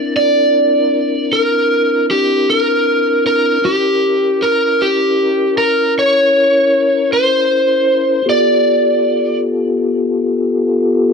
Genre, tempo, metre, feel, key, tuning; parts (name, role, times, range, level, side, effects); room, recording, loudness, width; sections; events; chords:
blues; 52 BPM (dotted quarters); 12/8; straight; A4 = 439 Hz
overdriven slide guitar; melody; 0.0-9.4 s; G4 to E5; -12 LUFS; equal
mellow tonewheel organ; sustained chords; 0.0-11.1 s; B3 to Bb4; -17 LUFS; left 2 dB; slow rotary speaker, chorus vibrato
wet studio reverb, RT60 0.5 s; dark, warm production; -12 LUFS; side -5 dB against mid
0.0-11.1 A section
0.0 C9; 3.6 C#dim7; 8.3 G9